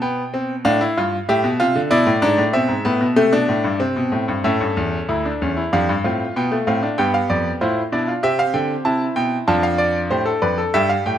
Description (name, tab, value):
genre	classical, baroque-style 4-part fugue for grand piano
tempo	95 BPM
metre	4/4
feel	straight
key	A minor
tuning	A4 = 440 Hz
part	bright concert grand piano	solo	0.0-11.2 s	D2 to A5	-16 LUFS	equal	none
room	light reverb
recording	close, detailed microphones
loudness	-16 LUFS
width	side -10 dB against mid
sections	0.0-4.5 A section; 4.5-11.2 B section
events	none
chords	0.0 N.C.; 0.7 Bm7b5 (rootless); 1.9 E7; 3.2 Am; 4.5 A7; 5.7 Dm/F; 7.0 G7; 8.2 C; 9.5 Dm7/F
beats	0.02 0.65 1.28 | 1.91 2.54 3.17 3.81 | 4.46 5.10 5.73 6.36 | 6.99 7.61 8.24 8.86 | 9.48 10.11 10.75